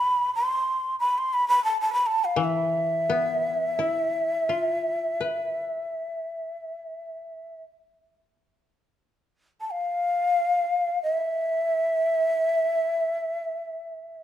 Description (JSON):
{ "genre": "japanese traditional, Japanese chamber music", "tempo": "free time", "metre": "none", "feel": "none", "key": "E miyako bushi", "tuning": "A4 = 440 Hz", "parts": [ { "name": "breathy hollow shakuhachi", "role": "melody", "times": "0.0-14.2 s", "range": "E5 to C6", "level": "-24 LUFS", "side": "equal", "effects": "none" }, { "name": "koto", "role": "accompaniment", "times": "0.0-8.1 s", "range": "A2 to B4", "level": "-30 LUFS", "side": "left 4 dB", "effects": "none" } ], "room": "light reverb", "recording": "minimal, uncompressed stereo recording", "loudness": "-23 LUFS", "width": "side -11 dB against mid", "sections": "0.0-14.2 A section", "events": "slowing down 12.6-14.2", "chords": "none" }